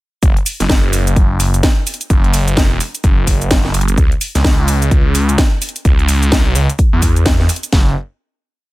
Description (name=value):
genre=bass house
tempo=128 BPM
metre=4/4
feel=swing 60% on 16ths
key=unclear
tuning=A4 = 441 Hz
part: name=phased detuned saw bass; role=bass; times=0.2-7.9 s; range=F#1 to E2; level=-14 LUFS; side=equal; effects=phaser, tube saturation, sidechain pumping
part: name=house drum kit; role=drums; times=0.2-7.9 s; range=kick drum, snare drum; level=-13 LUFS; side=equal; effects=none
part: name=house drum kit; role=drums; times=0.2-7.7 s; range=hi-hat, shaker, snare drum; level=-18 LUFS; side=equal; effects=none
room=little or no reverb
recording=none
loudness=-11 LUFS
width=side -18 dB against mid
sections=0.2-7.7 drop; 7.7-8.7 final note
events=drop 0.2-7.7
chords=none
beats=| 0.23 0.69 1.16 1.63 | 2.10 2.57 3.04 3.51 | 3.98 4.45 4.91 5.38 | 5.85 6.32 6.79 7.26 | 7.73